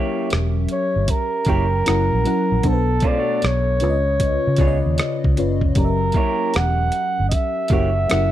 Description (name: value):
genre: R&B, neo-soul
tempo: 77 BPM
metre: 4/4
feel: swing 63% on 16ths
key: unclear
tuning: A4 = 439 Hz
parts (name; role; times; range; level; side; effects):
- electric guitar through a small old amp; second line; 0.0-7.9 s; A3 to C#5; -28 LUFS; right 4 dB; spring reverb
- FM electric piano with soft pad layer; accompaniment; 0.0-8.3 s; B2 to G5; -23 LUFS; left 3 dB; chorus
- vintage muted fingered electric bass; bass; 0.3-8.3 s; E1 to C#3; -20 LUFS; equal; none
- boom bap sampler-style drum kit; drums; 0.3-8.3 s; hi-hat, kick drum, rim click; -21 LUFS; right 1 dB; none
- mellow flugelhorn; melody; 0.7-8.3 s; A4 to F#5; -22 LUFS; right 1 dB; none
room: digital ambience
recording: dry, close 1970s-style studio recording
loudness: -17 LUFS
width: side -12 dB against mid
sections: 0.0-8.3 A section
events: none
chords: 0.0 F#7b9; 1.9 F#7; 2.6 Bm9; 3.8 C#7; 5.8 F#7b9